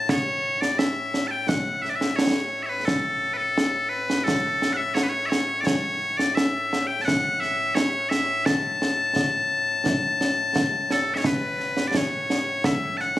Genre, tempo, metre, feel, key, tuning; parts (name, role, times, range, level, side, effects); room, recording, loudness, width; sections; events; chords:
scottish traditional, Scottish pipe music; 86 BPM; 4/4; straight; A major; A4 = 440 Hz
loud bright bagpipes; melody; 0.0-13.2 s; A2 to A5; -24 LUFS; left 2 dB
concert snare drum and concert bass drum; drums; 0.1-13.2 s; -25 LUFS; right 1 dB
moderate huge ambient reverb, RT60 4.8 s; recorded on a phone in the room, club reverb, compression; -21 LUFS; side -14 dB against mid
0.1-11.3 A section; 11.3-13.2 B section